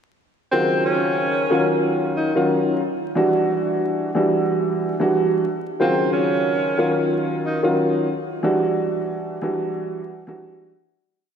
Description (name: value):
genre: hip hop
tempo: 91 BPM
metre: 4/4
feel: swing 59% on 16ths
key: unclear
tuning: A4 = 445 Hz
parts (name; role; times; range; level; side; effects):
- breathy tenor saxophone; melody; 0.5-7.6 s; C4 to Eb4; -24 LUFS; right 1 dB; high-pass filter, low-pass filter, analog delay
- dark baby grand piano; accompaniment; 0.5-10.7 s; Db3 to F#4; -19 LUFS; equal; cassette tape, high-pass filter, low-pass filter
room: wet lush hall reverb, RT60 3.1 s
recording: dreamy mix soaked in reverb, vinyl crackle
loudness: -18 LUFS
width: side -7 dB against mid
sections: 0.5-11.1 hook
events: fade-out 8.4-11.1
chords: 0.5 Ebm9; 3.2 Em9; 5.8 Ebm9; 8.4 Em9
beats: | 0.52 1.18 1.84 2.50 | 3.16 3.82 4.48 5.14 | 5.80 6.46 7.12 7.77 | 8.43 9.09 9.75 10.41